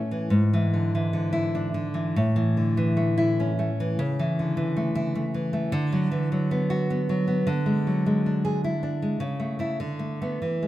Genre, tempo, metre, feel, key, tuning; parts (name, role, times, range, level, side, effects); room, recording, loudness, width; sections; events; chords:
romantic piece for solo classical guitar; 94-106 BPM; 3/4; rubato; A major; A4 = 442 Hz
nylon-string guitar; solo; 0.0-10.7 s; G#2 to G#4; -23 LUFS; equal
moderate concert hall reverb, RT60 1.8 s; minimal, uncompressed stereo recording; -23 LUFS; side -14 dB against mid
0.0-10.7 A section
0.3 E7/G#; 2.2 A; 4.0 A/C#; 5.7 Bm/D; 7.5 E7/D; 9.2 A/C#; 9.8 Bm7/D